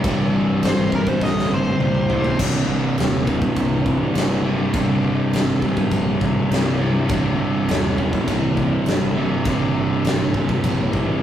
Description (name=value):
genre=stoner and doom metal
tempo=102 BPM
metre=4/4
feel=straight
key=unclear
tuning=A4 = 441 Hz
part: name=overdriven electric guitar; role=riff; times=0.0-11.2 s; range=C2 to C3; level=-24 LUFS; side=left 1 dB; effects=none
part: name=thick fuzz guitar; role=riff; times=0.0-11.2 s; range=C2 to C3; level=-26 LUFS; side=left 5 dB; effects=distortion
part: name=thick fuzz guitar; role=riff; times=0.0-11.2 s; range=C2 to C3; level=-23 LUFS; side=right 3 dB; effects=distortion
part: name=fuzz fingered electric bass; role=bass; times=0.0-11.2 s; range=C1 to C2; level=-26 LUFS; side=equal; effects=overdrive
part: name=big rock drum kit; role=drums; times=0.0-11.1 s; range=crash cymbal, kick drum, snare drum, toms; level=-23 LUFS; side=equal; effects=none
part: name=fuzz lead guitar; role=melody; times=0.6-2.4 s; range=Bb4 to Eb5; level=-24 LUFS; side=left 1 dB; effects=wah, distortion
room=moderate studio reverb, RT60 0.6 s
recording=rough rehearsal-room recording, warm saturation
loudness=-17 LUFS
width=side -10 dB against mid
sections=0.0-2.4 A section; 2.4-11.2 B section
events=lead electric guitar solo 0.0-2.4; drum fill 1.2-2.4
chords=0.0 C5